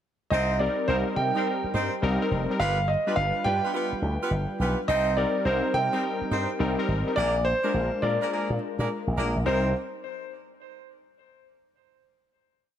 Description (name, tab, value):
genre	R&B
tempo	105 BPM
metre	4/4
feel	swing 66% on 16ths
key	C minor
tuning	A4 = 439 Hz
part	clear concert grand piano	melody	0.3-9.7 s	C5 to G5	-28 LUFS	right 1 dB	ping-pong delay
part	mellow horn section	stabs	0.3-9.7 s	Bb3 to C5	-33 LUFS	right 1 dB	ping-pong delay
part	slap bass with an envelope filter	bass	0.3-9.7 s	F1 to C3	-28 LUFS	equal	none
part	warm analog keys	accompaniment	0.6-9.7 s	G3 to B4	-29 LUFS	left 2 dB	chorus
room	light reverb, small room ambience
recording	none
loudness	-23 LUFS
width	side -10 dB against mid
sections	0.3-9.5 verse; 9.5-11.7 final chord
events	none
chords	0.3 Cm7; 2.6 G7; 4.9 Cm7; 7.2 Bb7; 9.5 Cm7